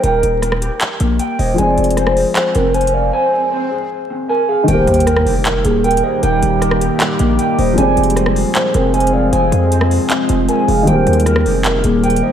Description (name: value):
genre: hip hop, trap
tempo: 155 BPM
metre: 4/4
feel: half-time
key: Eb major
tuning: A4 = 441 Hz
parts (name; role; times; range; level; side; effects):
- hollow clarinet-like synth lead; second line; 0.0-12.3 s; Ab4 to D5; -19 LUFS; right 1 dB; chorus, ping-pong delay
- dark concert grand piano; accompaniment; 0.0-12.3 s; Eb3 to C5; -20 LUFS; left 2 dB; analog chorus, low-pass filter
- mellow electric guitar; arpeggios; 0.0-12.3 s; Bb3 to Ab5; -18 LUFS; right 1 dB; lush chorus, low-pass filter, ping-pong delay
- distorted 808-style bass; bass; 0.0-12.2 s; Eb1 to F2; -17 LUFS; equal; distortion
- trap drum kit; drums; 0.0-12.2 s; handclaps, hi-hat, rim click; -21 LUFS; equal; none
- swell and impact; sound effects; 2.9-6.2 s; none; -27 LUFS; right 1 dB; none
- deep dark ambient pad; sustained chords; 5.4-12.3 s; Eb3 to Ab4; -19 LUFS; right 1 dB; chorus, built-in reverb
room: moderate lush hall reverb, RT60 1.5 s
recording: dreamy mix soaked in reverb, vinyl crackle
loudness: -12 LUFS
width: side -9 dB against mid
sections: 0.0-4.7 A section; 4.7-12.3 B section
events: swell 2.9-4.7; break 3.1-4.7; impact 4.7-6.2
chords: 0.0 Eb; 1.6 Fm; 4.7 Eb; 7.8 Fm; 10.9 Eb